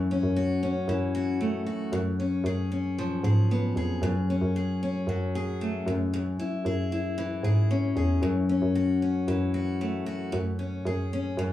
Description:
acoustic pop; 114 BPM; 4/4; straight; A4 = 440 Hz
picked steel-string acoustic guitar; accompaniment; 0.0-11.5 s; F#2 to G#4; -27 LUFS; left 2 dB
hollow knocking FM bass; bass; 0.0-11.5 s; E2 to G#2; -29 LUFS; equal
moderate small room reverb, RT60 0.6 s; small room reverb; -25 LUFS; side -13 dB against mid
0.0-11.5 A section
0.0 A/F#; 1.9 C#7/F#; 4.0 F#madd9; 5.9 C#m/F#; 8.2 A/F#; 10.3 C#5/F#

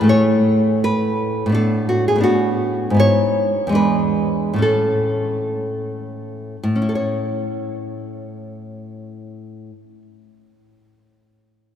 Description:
romantic piece for solo classical guitar; 54-86 BPM; 2/4; rubato; A major; A4 = 439 Hz
nylon-string guitar; solo; 0.0-10.0 s; E2 to C#5; -17 LUFS; equal
wet church reverb, RT60 4.0 s; recorded in a church or concert hall; -16 LUFS; side -9 dB against mid
0.0-6.6 A section; 6.6-10.9 B section
slowing down 2.2-6.6
0.1 A; 1.5 Bm7/A; 3.0 E/G#; 3.8 E7; 4.6 A

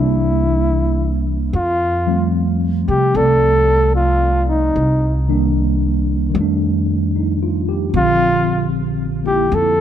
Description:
jazz ballad; 75 BPM; 4/4; swing 67% on 8ths; F major; A4 = 440 Hz
breathy flugelhorn; melody; 0.0-9.8 s; Eb4 to A4; -17 LUFS; equal
tine electric piano; accompaniment; 0.0-9.8 s; D3 to D5; -19 LUFS; equal; medium stereo tremolo
upright bass; bass; 0.0-9.8 s; Bb1 to C3; -18 LUFS; equal
light reverb; -14 LUFS; side -10 dB against mid
0.0-1.5 A section; 1.5-9.8 B section
0.0 C7; 1.5 F; 4.7 Cm7; 6.3 F13; 7.9 Bbadd9

